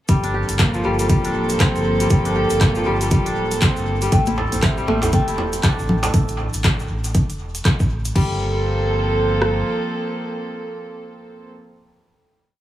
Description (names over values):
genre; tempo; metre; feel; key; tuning
afro house; 119 BPM; 4/4; swing 59% on 16ths; G dorian; A4 = 439 Hz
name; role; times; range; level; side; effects
rich chamber string section; sustained chords; 0.1-11.5 s; F3 to A4; -24 LUFS; right 1 dB; sidechain pumping
kora; arpeggios; 0.1-10.3 s; F3 to A4; -24 LUFS; equal; sidechain pumping, dub echo
warm sub bass; bass; 0.1-9.6 s; D1 to A1; -24 LUFS; equal; sidechain pumping
afro-pop drum kit; drums; 0.1-9.6 s; kick drum, rim click; -18 LUFS; equal; none
afro-pop drum kit; drums; 0.1-8.3 s; crash cymbal, handclaps, hi-hat, rim click; -26 LUFS; equal; none
cabasa; percussion; 0.1-8.1 s; none; -35 LUFS; left 3 dB; dub echo
marimba with medium mallets; melody; 4.1-5.8 s; E5 to G5; -29 LUFS; left 4 dB; dub echo
djembe; percussion; 4.1-6.1 s; none; -29 LUFS; right 2 dB; dub echo
congas; percussion; 4.3-6.0 s; none; -25 LUFS; left 2 dB; dub echo
room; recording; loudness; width
light reverb, small room ambience; echo-heavy mix; -17 LUFS; side -13 dB against mid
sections
0.1-8.2 drop; 8.2-12.2 final chord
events
drop 0.1-8.2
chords
0.1 Gm11; 4.1 Am7; 8.2 Gm11